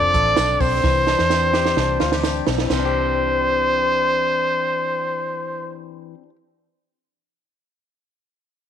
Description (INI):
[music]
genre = jangly indie pop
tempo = 129 BPM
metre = 4/4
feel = straight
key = C major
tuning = A4 = 440 Hz
[part]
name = bright trumpet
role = melody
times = 0.0-5.8 s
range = C5 to D5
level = -19 LUFS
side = right 1 dB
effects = slapback echo
[part]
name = direct-recorded clean electric guitar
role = arpeggios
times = 0.0-6.4 s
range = E3 to A4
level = -25 LUFS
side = left 14 dB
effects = none
[part]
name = vintage muted fingered electric bass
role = bass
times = 0.0-5.8 s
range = F1 to E2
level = -25 LUFS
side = equal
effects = none
[part]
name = compact cocktail drum kit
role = drums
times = 0.1-2.8 s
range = crash cymbal, hi-hat, kick drum, snare drum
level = -24 LUFS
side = right 6 dB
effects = none
[part]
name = tambourine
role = percussion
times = 0.4-2.9 s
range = none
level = -39 LUFS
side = right 16 dB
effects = none
[sound]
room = light reverb, studio reverb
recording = 1960s-style stereo with parts hard left and right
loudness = -17 LUFS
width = side -9 dB against mid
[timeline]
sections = 0.0-2.7 A section; 2.7-6.4 B section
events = drum fill 0.8-2.7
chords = 0.0 F6; 0.8 Cadd9